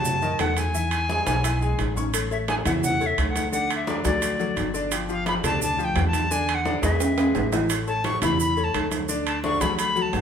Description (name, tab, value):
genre	latin, salsa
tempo	173 BPM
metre	4/4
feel	straight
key	A major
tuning	A4 = 441 Hz
part	bright reedy silver concert flute	melody	0.0-10.2 s	D5 to C#6	-26 LUFS	left 1 dB	none
part	bright concert grand piano	accompaniment	0.0-10.2 s	D3 to E6	-27 LUFS	left 3 dB	none
part	upright bass	bass	0.0-10.2 s	G1 to F#2	-28 LUFS	right 1 dB	none
part	maracas	percussion	0.0-10.2 s	none	-35 LUFS	right 7 dB	none
part	congas	percussion	0.1-10.2 s	none	-30 LUFS	right 1 dB	none
part	timbales	percussion	0.4-10.2 s	none	-29 LUFS	right 4 dB	none
room	wet large studio reverb, RT60 0.9 s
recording	band playing live in one room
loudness	-21 LUFS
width	side -8 dB against mid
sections	0.0-2.1 A section; 2.1-10.2 B section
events	drum fill 7.0-7.7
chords	0.0 B7 (rootless); 0.7 E; 2.1 A; 3.5 D; 4.9 G5; 6.3 E7; 7.7 A; 9.1 D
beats	0.05 0.40 | 0.74 1.09 1.44 1.79 | 2.13 2.48 2.83 3.18 | 3.53 3.87 4.22 4.57 | 4.92 5.26 5.61 5.96 | 6.31 6.65 7.00 7.35 | 7.70 8.04 8.39 8.74 | 9.09 9.44 9.78 10.13